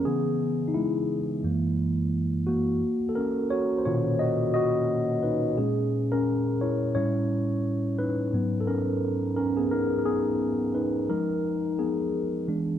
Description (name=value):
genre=R&B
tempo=87 BPM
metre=4/4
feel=swing 58% on 16ths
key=unclear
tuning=A4 = 440 Hz
part: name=mellow tine electric piano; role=solo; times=0.0-12.8 s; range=Gb2 to D#5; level=-24 LUFS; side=equal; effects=phaser, slapback echo
room=moderate plate reverb, RT60 2.6 s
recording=none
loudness=-24 LUFS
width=side -10 dB against mid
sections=0.0-12.8 A section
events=tine electric piano solo 0.0-12.8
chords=0.0 Dbm7; 1.4 Gb7; 2.8 Bmaj9; 5.6 Bbm7b5; 6.9 A7; 8.3 Abm9; 11.1 Fm7b5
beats=| 0.05 0.74 1.43 2.12 | 2.81 3.50 4.18 4.87 | 5.56 6.25 6.94 7.63 | 8.32 9.01 9.70 10.39 | 11.08 11.77 12.46